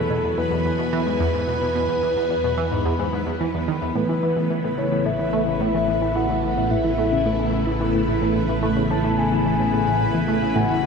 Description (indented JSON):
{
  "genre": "ambient, sequencer-driven space music",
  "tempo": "109 BPM",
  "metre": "4/4",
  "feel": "straight",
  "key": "A major",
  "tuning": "A4 = 440 Hz",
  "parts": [
    { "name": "soft octave-layered synth lead", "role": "melody", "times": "0.0-10.9 s", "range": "A4 to A5", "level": "-25 LUFS", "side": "left 2 dB", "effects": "chorus, shimmer reverb, ping-pong delay" },
    { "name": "phased string machine", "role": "sustained chords", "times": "0.0-10.9 s", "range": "C#3 to G#5", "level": "-24 LUFS", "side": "equal", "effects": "ensemble chorus, phaser, shimmer reverb" },
    { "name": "analog drone", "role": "bass", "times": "0.0-10.9 s", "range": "A1 to E2", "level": "-29 LUFS", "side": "equal", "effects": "chorus" },
    { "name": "bubbling stepped-filter texture", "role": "texture", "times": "0.0-10.9 s", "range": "B4 to B5", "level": "-32 LUFS", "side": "right 1 dB", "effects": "chorus, built-in reverb, shimmer reverb" },
    { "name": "tight sequenced synth", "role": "riff", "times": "0.1-10.9 s", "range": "E2 to A3", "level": "-25 LUFS", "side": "equal", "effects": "chorus, shimmer reverb, ping-pong delay" }
  ],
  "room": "wet lush hall reverb, RT60 2.6 s",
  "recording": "dreamy mix soaked in reverb",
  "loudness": "-19 LUFS",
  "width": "side -5 dB against mid",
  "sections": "0.0-10.9 A section",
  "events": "none",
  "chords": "0.0 Eadd9; 4.0 Aadd9"
}